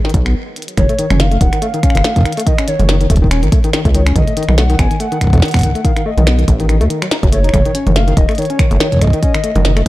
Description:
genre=IDM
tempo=142 BPM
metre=4/4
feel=swing 56% on 16ths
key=F# melodic minor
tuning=A4 = 440 Hz
part: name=warbly nostalgic lead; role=melody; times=0.0-9.9 s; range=B4 to G#5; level=-21 LUFS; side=equal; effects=chorus, tape echo
part: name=overdriven tine electric piano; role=arpeggios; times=0.0-9.9 s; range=D#3 to D#4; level=-19 LUFS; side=left 2 dB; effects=tape echo
part: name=glitchy drum kit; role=drums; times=0.0-9.8 s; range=finger snaps, hi-hat, snare drum, toms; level=-20 LUFS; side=right 1 dB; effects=none
part: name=deep acid bass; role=bass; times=0.1-9.9 s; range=D#1 to D#2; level=-13 LUFS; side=equal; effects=tube saturation
part: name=electronic kick drum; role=drums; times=0.1-9.9 s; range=none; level=-13 LUFS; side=equal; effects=none
room=digital ambience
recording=dark, warm production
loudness=-11 LUFS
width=side -17 dB against mid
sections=0.8-9.9 A section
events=stop 0.4-0.8; drum fill 0.6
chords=0.0 N.C.; 0.8 F#m6; 4.2 B7; 7.5 F#m6

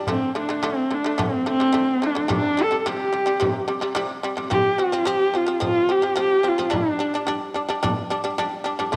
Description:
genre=mongolian traditional, Mongolian folk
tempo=108 BPM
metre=4/4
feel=straight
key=unclear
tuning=A4 = 441 Hz
part: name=shamisen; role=arpeggios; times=0.0-9.0 s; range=C3 to D4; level=-28 LUFS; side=equal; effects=none
part: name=warm horsehead fiddle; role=melody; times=0.1-7.3 s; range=C4 to A4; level=-23 LUFS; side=equal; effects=cassette tape
part: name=frame drum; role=percussion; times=0.1-9.0 s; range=none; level=-32 LUFS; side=equal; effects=none
room=moderate lush hall reverb, RT60 2.5 s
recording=home recording on cassette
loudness=-22 LUFS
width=mono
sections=0.0-9.0 A section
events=none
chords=0.1 D5; 2.3 C5; 4.5 F5; 6.7 G5

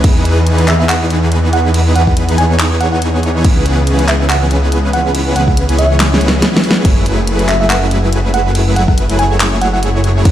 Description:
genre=future bass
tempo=141 BPM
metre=4/4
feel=swing 55% on 16ths, half-time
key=unclear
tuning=A4 = 439 Hz
part: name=supersaw chords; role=riff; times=0.0-10.3 s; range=E3 to C#5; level=-16 LUFS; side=equal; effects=sidechain pumping
part: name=wide detuned saw bass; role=bass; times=0.0-10.3 s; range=F#1 to E2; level=-13 LUFS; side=equal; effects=chorus, sidechain pumping
part: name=electronic kick drum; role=drums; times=0.0-10.3 s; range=none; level=-11 LUFS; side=equal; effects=studio reverb
part: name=pop drum kit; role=drums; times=0.0-10.3 s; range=crash cymbal, handclaps, hi-hat, snare drum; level=-18 LUFS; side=equal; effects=studio reverb
part: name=bell-like FM electric piano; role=melody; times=0.7-9.8 s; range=E5 to G#5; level=-19 LUFS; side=right 1 dB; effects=chorus, sidechain pumping, ping-pong delay
room=light reverb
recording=played on a big sound system in a bare room, stone room reverb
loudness=-10 LUFS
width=side -11 dB against mid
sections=0.0-10.3 A section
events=drum fill 6.0-6.8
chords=0.0 Emaj7; 3.4 C#m7; 6.8 F#m11

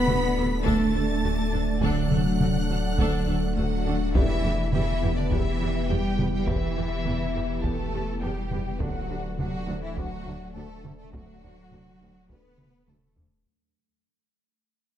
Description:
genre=cinematic, hybrid orchestral and electronic film score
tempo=103 BPM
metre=4/4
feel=straight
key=unclear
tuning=A4 = 440 Hz
part: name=rich symphonic violin section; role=melody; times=0.0-13.2 s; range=D5 to B6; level=-36 LUFS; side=left 1 dB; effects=low-pass filter
part: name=warm symphonic violin section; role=second line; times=0.0-13.2 s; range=D4 to B5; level=-38 LUFS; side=left 1 dB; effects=none
part: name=glassy FM pad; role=sustained chords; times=0.0-13.5 s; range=A3 to D5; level=-32 LUFS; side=left 1 dB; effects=ensemble chorus, built-in reverb, low-pass filter
part: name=mellow French horn section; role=sustained chords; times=0.0-12.5 s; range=F#3 to A4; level=-33 LUFS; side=left 3 dB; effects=none
part: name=pure sine sub bass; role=bass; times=0.0-13.5 s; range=D1 to E1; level=-30 LUFS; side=equal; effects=none
part: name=rich symphonic cello section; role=bass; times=0.0-13.2 s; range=D3 to B3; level=-33 LUFS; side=right 2 dB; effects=none
part: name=clear studio viola section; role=accompaniment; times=0.1-13.3 s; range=A3 to A4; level=-37 LUFS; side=right 1 dB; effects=low-pass filter
part: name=harp-like synth pluck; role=arpeggios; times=0.1-13.3 s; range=D3 to E4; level=-34 LUFS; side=right 2 dB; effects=none
part: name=rich symphonic double bass section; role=bass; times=0.1-13.3 s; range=D2 to E2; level=-34 LUFS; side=right 2 dB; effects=none
part: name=taiko ensemble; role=drums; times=0.1-13.4 s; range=none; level=-29 LUFS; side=equal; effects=none
room=moderate scoring stage reverb, RT60 1.8 s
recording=none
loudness=-23 LUFS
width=side -10 dB against mid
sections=0.0-4.1 A section; 4.1-13.5 B section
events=fade-out 4.1-13.5; filter sweep 4.1-13.5; drum fill 12.6-13.5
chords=0.0 D; 4.1 Em; 8.8 D

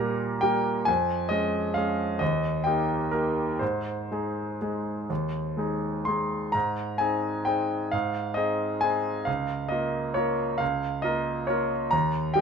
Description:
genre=classical, piano waltz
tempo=118-142 BPM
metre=3/4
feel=rubato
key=Ab major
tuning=A4 = 442 Hz
part: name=clear concert grand piano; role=solo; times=0.0-12.4 s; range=Db2 to C6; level=-25 LUFS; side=equal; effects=none
room=light reverb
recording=none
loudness=-25 LUFS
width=side -6 dB against mid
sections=0.0-6.5 A section; 6.5-12.4 B section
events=none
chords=0.0 Eb (rootless); 0.9 Db/F; 2.2 Eb; 3.6 Ab; 9.3 Bbm/Db

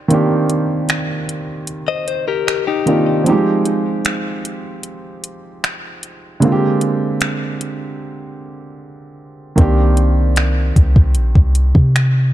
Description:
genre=contemporary R&B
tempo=76 BPM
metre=4/4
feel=straight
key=C minor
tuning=A4 = 439 Hz
part: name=warm grand piano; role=accompaniment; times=0.0-12.3 s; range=D3 to G4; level=-18 LUFS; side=right 2 dB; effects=none
part: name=smooth R&B drum kit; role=drums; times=0.1-12.1 s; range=finger snaps, hi-hat, kick drum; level=-16 LUFS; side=equal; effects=none
part: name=direct-recorded clean electric guitar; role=arpeggios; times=1.9-3.2 s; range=Eb4 to Eb5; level=-20 LUFS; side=left 8 dB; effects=digital delay
part: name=clean 808-style bass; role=bass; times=9.6-12.3 s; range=Bb1 to C3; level=-13 LUFS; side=equal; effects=none
room=light reverb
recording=dark, warm production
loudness=-14 LUFS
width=side -13 dB against mid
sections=0.0-12.3 A section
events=break 0.0-9.6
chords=0.0 Cm9; 3.3 Fm9; 6.4 Bb13; 9.6 Cm9

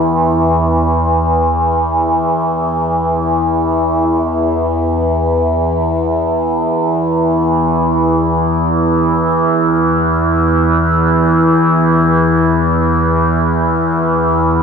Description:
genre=ambient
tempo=free time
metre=none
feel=none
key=unclear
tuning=A4 = 438 Hz
part: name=overtone-sweeping drone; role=solo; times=0.0-14.6 s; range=E2 to E3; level=-11 LUFS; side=equal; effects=chorus, built-in reverb, ping-pong delay
room=wet cathedral reverb, RT60 5.3 s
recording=none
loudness=-12 LUFS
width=side -6 dB against mid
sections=0.0-4.0 A section; 4.0-14.6 B section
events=none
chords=none

